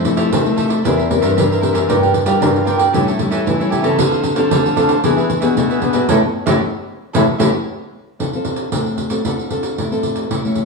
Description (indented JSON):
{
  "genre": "samba and choro",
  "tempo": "114 BPM",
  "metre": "4/4",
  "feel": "straight",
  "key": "unclear",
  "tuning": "A4 = 440 Hz",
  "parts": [
    { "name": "cavaquinho", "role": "accompaniment", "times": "0.0-7.5 s", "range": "D4 to G5", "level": "-20 LUFS", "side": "right 5 dB", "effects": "none" },
    { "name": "nylon-string guitar", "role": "accompaniment", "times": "0.0-10.7 s", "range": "A2 to Bb4", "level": "-18 LUFS", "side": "left 3 dB", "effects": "none" },
    { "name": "nylon-string guitar", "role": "bass", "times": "0.0-7.5 s", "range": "E2 to G3", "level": "-20 LUFS", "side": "left 1 dB", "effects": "none" },
    { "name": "pandeiro", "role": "percussion", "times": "0.0-10.7 s", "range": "none", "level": "-20 LUFS", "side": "right 2 dB", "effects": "none" }
  ],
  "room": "wet stone room reverb, RT60 1.2 s",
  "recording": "band playing live in one room, studio reverb",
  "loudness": "-14 LUFS",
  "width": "side -3 dB against mid",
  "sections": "0.0-8.2 A section; 8.2-10.7 B section",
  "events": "band accent 6.1-8.2",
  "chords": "0.0 Fmaj7; 0.8 C7/E; 1.9 Gm7; 2.9 A7; 4.0 Dm7; 5.0 E7; 6.1 A; 8.2 Dm7",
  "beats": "0.32 0.84 1.37 | 1.89 2.42 2.94 3.47 | 3.99 4.52 5.04 5.57 | 6.09 6.62 7.14 7.67 | 8.20 8.72 9.25 9.78 | 10.30"
}